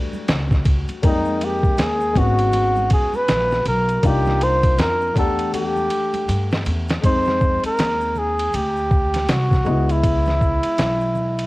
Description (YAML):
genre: hip hop, jazz-hop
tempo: 80 BPM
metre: 4/4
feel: swing 61% on 16ths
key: unclear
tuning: A4 = 440 Hz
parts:
  - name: dark grand piano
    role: accompaniment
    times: 0.0-11.5 s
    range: G3 to G5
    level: -26 LUFS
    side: left 4 dB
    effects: cassette tape
  - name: congas and tube shaker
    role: percussion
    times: 0.1-11.5 s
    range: none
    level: -38 LUFS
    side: right 5 dB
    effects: none
  - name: upright bass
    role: bass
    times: 0.3-11.5 s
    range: Ab1 to G2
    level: -23 LUFS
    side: equal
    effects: none
  - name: boom bap sampler-style drum kit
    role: drums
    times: 0.3-11.5 s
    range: hi-hat, kick drum, ride cymbal, snare drum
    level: -21 LUFS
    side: equal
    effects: cassette tape
  - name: breathy flugelhorn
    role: melody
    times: 1.1-11.5 s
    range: Eb4 to C5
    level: -20 LUFS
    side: equal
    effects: cassette tape
room: light reverb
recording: home recording on cassette, vinyl crackle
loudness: -16 LUFS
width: side -20 dB against mid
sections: 0.0-7.0 A section; 7.0-11.5 B section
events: drum fill 5.5-7.0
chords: 0.0 Em11 (rootless); 1.0 Fm11; 2.2 Abm11; 4.0 Cm11; 5.2 Em11; 7.0 Fm9; 9.7 Dbm9